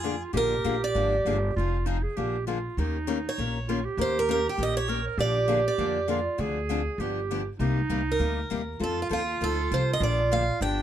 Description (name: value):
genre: acoustic string swing (jazz manouche)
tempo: 199 BPM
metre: 4/4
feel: swing 57% on 8ths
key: Bb mixolydian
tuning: A4 = 440 Hz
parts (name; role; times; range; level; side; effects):
- picked swing-style acoustic guitar; melody; 0.0-10.8 s; F4 to G5; -28 LUFS; right 2 dB; plate reverb
- breathy clarinet; second line; 0.0-10.8 s; D4 to Bb4; -31 LUFS; right 5 dB; none
- picked steel-string acoustic guitar; accompaniment; 0.0-10.8 s; C3 to Bb4; -32 LUFS; left 7 dB; none
- upright bass; bass; 0.0-10.8 s; F1 to F2; -30 LUFS; equal; none
room: light reverb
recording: dark, warm production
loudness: -24 LUFS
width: side -10 dB against mid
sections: 0.0-10.8 A section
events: none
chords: 0.0 Bb7; 1.6 Fm7; 2.2 Bb7; 2.8 Eb7; 5.2 Bb7; 6.4 Dm7b5; 7.0 G7; 7.6 Cm7; 8.8 F7; 10.0 Bb7